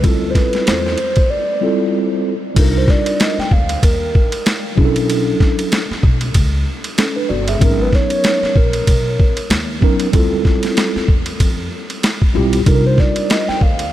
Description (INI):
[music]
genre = hip hop, jazz-hop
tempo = 95 BPM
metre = 4/4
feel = swing 58% on 16ths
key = unclear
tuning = A4 = 441 Hz
[part]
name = hollow clarinet-like synth lead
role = melody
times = 0.0-13.9 s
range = A4 to G5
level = -21 LUFS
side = equal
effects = chorus
[part]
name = mellow tine electric piano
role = accompaniment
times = 0.0-13.6 s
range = F#3 to E5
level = -19 LUFS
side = right 1 dB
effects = medium stereo tremolo
[part]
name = upright bass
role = bass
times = 0.0-13.9 s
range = G1 to F2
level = -20 LUFS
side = equal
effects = none
[part]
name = boom bap sampler-style drum kit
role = drums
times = 0.0-13.9 s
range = crash cymbal, hi-hat, kick drum, ride cymbal, snare drum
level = -15 LUFS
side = equal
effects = none
[sound]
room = light reverb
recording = none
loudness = -13 LUFS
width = side -13 dB against mid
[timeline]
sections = 0.0-2.6 A section; 2.6-13.9 B section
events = break 1.3-2.6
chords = 0.0 Dm11; 2.6 Cm11 (rootless); 4.8 Bm11; 7.6 Abm11; 10.1 Dm11 (rootless); 12.7 Cm11